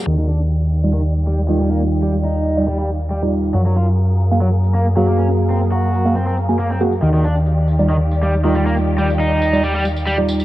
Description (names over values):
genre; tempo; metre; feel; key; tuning
breakbeat, breaks; 138 BPM; 4/4; straight; Eb major; A4 = 440 Hz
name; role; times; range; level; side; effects
bright studio string section; sustained chords; 0.0-10.4 s; Eb3 to F5; -26 LUFS; left 1 dB; none
cranked stack guitar; riff; 0.1-10.2 s; Eb3 to Gb4; -22 LUFS; equal; overdrive, vintage 12-bit sampler grit, low-pass filter, tape echo
picked electric bass; bass; 0.1-10.4 s; Eb2 to Gb2; -17 LUFS; equal; low-pass filter
tambourine; drums; 0.1-10.4 s; none; -38 LUFS; right 2 dB; none
tine electric piano; stabs; 0.8-10.4 s; G3 to Ab5; -20 LUFS; right 2 dB; phaser, low-pass filter, tape echo
room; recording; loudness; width
light reverb, studio ambience; dry, gritty hardware recording, vinyl crackle, low-pass filter; -14 LUFS; side -15 dB against mid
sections
0.1-10.4 A section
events
filter sweep 0.1-10.4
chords
0.1 Ebmaj9; 3.5 Gbmaj9; 7.0 Ebmaj9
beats
| 0.07 0.50 0.94 1.37 | 1.81 2.24 2.68 3.11 | 3.55 3.98 4.42 4.85 | 5.29 5.72 6.16 6.59 | 7.03 7.46 7.89 8.33 | 8.76 9.20 9.63 10.07